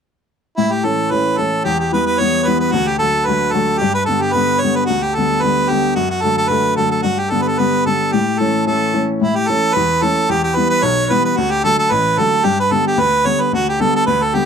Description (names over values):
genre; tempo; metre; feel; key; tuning
celtic folk; 222 BPM; 4/4; swing 55% on 8ths; A mixolydian; A4 = 440 Hz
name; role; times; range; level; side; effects
clear harmonica; melody; 0.6-14.5 s; E4 to C#5; -16 LUFS; right 2 dB; none
clear upright piano; accompaniment; 0.6-14.5 s; A1 to C#4; -17 LUFS; left 3 dB; none
room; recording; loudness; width
moderate small room ambience, RT60 0.5 s; dark, warm production; -14 LUFS; side -7 dB against mid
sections
0.6-9.2 A section; 9.2-14.5 A section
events
none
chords
0.6 A; 1.7 Em; 2.7 D; 3.8 G; 6.0 D/F#; 7.1 G; 8.1 A; 10.3 Em; 11.4 D; 12.4 G